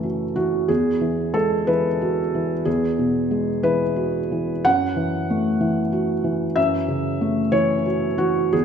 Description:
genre	neoclassical minimalist piano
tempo	61 BPM (dotted quarters)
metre	6/8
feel	rubato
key	F# minor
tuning	A4 = 440 Hz
part	felt-muted upright piano	solo	0.0-8.6 s	E2 to F#5	-19 LUFS	equal	none
room	moderate scoring stage reverb, RT60 1.9 s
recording	minimal, uncompressed stereo recording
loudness	-19 LUFS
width	side -7 dB against mid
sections	0.0-8.6 A section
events	none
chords	0.0 F#m7; 0.7 Eadd9; 4.6 F#m7

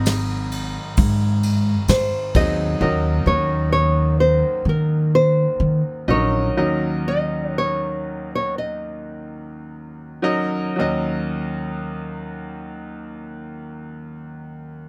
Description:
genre	acoustic folk-pop ballad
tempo	53-66 BPM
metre	4/4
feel	straight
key	Eb dorian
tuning	A4 = 436 Hz
part	nylon-string guitar	melody	0.0-14.1 s	Bb4 to Eb5	-24 LUFS	equal	none
part	clear concert grand piano	accompaniment	0.0-14.9 s	Ab1 to Eb5	-28 LUFS	equal	none
part	upright bass	bass	0.0-6.5 s	Ab1 to Eb3	-22 LUFS	equal	none
part	soft brush drum kit	drums	0.1-2.6 s	kick drum, ride cymbal, snare drum	-27 LUFS	equal	none
room	light reverb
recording	close, detailed microphones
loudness	-20 LUFS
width	mono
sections	0.0-10.8 A section; 10.8-14.9 B section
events	slowing down 2.8-10.8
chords	0.0 Ab7; 2.8 Ebm7

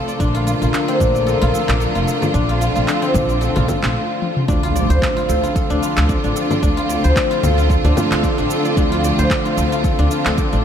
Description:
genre	organic downtempo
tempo	112 BPM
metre	4/4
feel	swing 55% on 16ths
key	D minor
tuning	A4 = 439 Hz
part	clear symphonic string section	sustained chords	0.0-10.6 s	C3 to A4	-21 LUFS	equal	sidechain pumping
part	guzheng	arpeggios	0.0-10.6 s	C4 to D5	-20 LUFS	left 2 dB	ping-pong delay
part	afro-pop drum kit	drums	0.1-10.6 s	congas, handclaps, shaker, toms	-25 LUFS	left 1 dB	none
part	upright bass	bass	0.2-10.6 s	F1 to D2	-19 LUFS	equal	none
part	electronic kick drum	drums	0.2-10.5 s	none	-20 LUFS	equal	none
part	impact	sound effects	4.5-6.6 s	none	-26 LUFS	right 1 dB	none
room	moderate lush hall reverb, RT60 2.5 s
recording	dreamy mix soaked in reverb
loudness	-15 LUFS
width	side -8 dB against mid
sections	0.0-4.5 A section; 4.5-10.6 B section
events	break 3.9-4.5; drum fill 4.2; impact 4.5-6.6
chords	0.2 Bbmaj7; 4.5 Dm7

